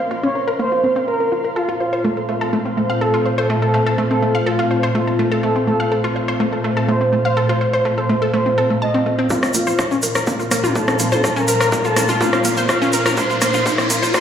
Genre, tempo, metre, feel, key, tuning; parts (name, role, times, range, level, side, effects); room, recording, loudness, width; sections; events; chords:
melodic techno; 124 BPM; 4/4; straight; Bb harmonic minor; A4 = 435 Hz
expressive synth lead; melody; 0.0-14.2 s; F4 to Eb5; -21 LUFS; equal; chorus, sidechain pumping, tape echo
dark analog pad; sustained chords; 0.0-14.2 s; Bb2 to F5; -23 LUFS; equal; chorus, phaser, sidechain pumping
analog pluck; arpeggios; 0.0-14.2 s; A3 to A5; -20 LUFS; equal; chorus, sidechain pumping, tape echo
ethereal airy pad; texture; 0.0-14.2 s; F4 to C6; -27 LUFS; equal; ensemble chorus, built-in reverb, sidechain pumping
soft supersaw; second line; 9.3-14.2 s; F5 to C6; -24 LUFS; equal; sidechain pumping, low-pass filter, tape echo
analog drone; drone; 9.6-14.2 s; Bb2; -26 LUFS; left 1 dB; chorus, sidechain pumping
electronic kick drum; drums; 9.3-14.2 s; -24 LUFS; equal; high-pass filter on kick, high-pass filter on room
tube shaker; percussion; 9.3-14.2 s; -27 LUFS; right 2 dB
riser; sound effects; 11.0-14.2 s; -25 LUFS; equal
tight sequencer bass; bass; 9.4-14.1 s; Bb1; -34 LUFS; left 1 dB
techno drum kit; drums; 9.4-14.2 s; hi-hat, rim click, toms; -21 LUFS; left 1 dB
wet recital hall reverb, RT60 1.6 s; played on a big sound system in a bare room, large studio reverb, high-pass filter; -15 LUFS; side -9 dB against mid
0.0-9.3 A section; 9.3-14.2 B section
filter sweep on synth arpeggio sound 0.0-9.3; build-up 9.3-14.2; filter sweep on supersaw synth 9.3-14.2; riser 11.0-14.2
0.0 Bbmadd9; 1.6 F/Bb; 9.3 Bbmadd9